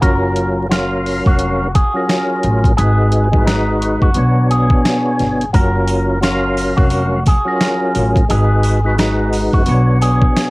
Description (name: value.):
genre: hip hop, boom-bap hip-hop.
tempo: 87 BPM.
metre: 4/4.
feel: swing 60% on 16ths.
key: F# major.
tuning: A4 = 440 Hz.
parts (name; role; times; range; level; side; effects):
electric guitar with an envelope filter; melody; 0.0-10.5 s; D#4 to A#4; -20 LUFS; equal; high-pass filter, low-pass filter, cassette tape.
percussive tonewheel organ; accompaniment; 0.0-10.5 s; B2 to E#5; -17 LUFS; equal; overdrive, chorus vibrato, slow rotary speaker, cassette tape, high-pass filter, low-pass filter.
upright bass; bass; 0.0-10.2 s; E#1 to B1; -17 LUFS; equal; none.
boom bap sampler-style drum kit; drums; 0.0-10.5 s; hi-hat, kick drum, snare drum; -15 LUFS; equal; none.
sleigh bells; percussion; 5.5-10.5 s; none; -33 LUFS; right 5 dB; none.
room: digital ambience.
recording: home recording on cassette, vinyl crackle.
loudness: -12 LUFS.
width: side -22 dB against mid.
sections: 0.0-10.5 A section.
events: none.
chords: 0.0 F#maj7; 2.8 G#m7; 4.2 Bmadd9; 5.5 F#maj7; 8.3 G#m7; 9.7 Bmadd9.